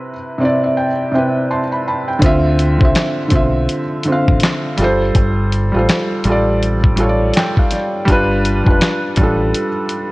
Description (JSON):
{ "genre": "lo-fi hip hop", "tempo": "82 BPM", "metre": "4/4", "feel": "swing 60% on 16ths", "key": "D dorian", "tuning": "A4 = 439 Hz", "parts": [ { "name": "felt-muted upright piano", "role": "accompaniment", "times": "0.0-10.1 s", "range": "C3 to C6", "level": "-16 LUFS", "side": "equal", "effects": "cassette tape, low-pass filter" }, { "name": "deep dub fingered electric bass", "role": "bass", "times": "2.2-9.5 s", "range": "F1 to D2", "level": "-18 LUFS", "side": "equal", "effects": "none" }, { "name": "dusty soul sampler-style drum kit", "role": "drums", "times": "2.2-10.1 s", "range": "handclaps, hi-hat, kick drum, snare drum", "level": "-15 LUFS", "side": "equal", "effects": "none" } ], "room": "light reverb", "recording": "cassette tape", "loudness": "-13 LUFS", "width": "side -20 dB against mid", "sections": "0.0-2.2 A section; 2.2-10.1 B section", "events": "felt piano fill 0.0-2.2", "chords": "0.0 Cmaj7; 2.2 Dm9; 4.8 G9sus4; 8.1 G7" }